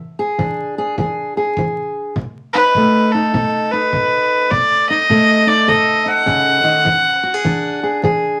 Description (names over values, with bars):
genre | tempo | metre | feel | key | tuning
acoustic country blues, solo or duo | 102 BPM | 4/4 | swing 64% on 8ths | unclear | A4 = 441 Hz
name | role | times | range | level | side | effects
fingerpicked steel-string acoustic guitar | accompaniment | 0.0-8.4 s | B2 to A4 | -20 LUFS | equal | none
kick drum | drums | 0.4-8.2 s | none | -29 LUFS | equal | none
rich fiddle | melody | 2.5-7.8 s | A4 to F#5 | -16 LUFS | equal | none
room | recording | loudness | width
moderate studio ambience, RT60 0.5 s | vinyl crackle | -16 LUFS | mono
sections
0.0-8.4 A section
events
none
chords
0.0 E7; 2.2 B7; 6.9 E7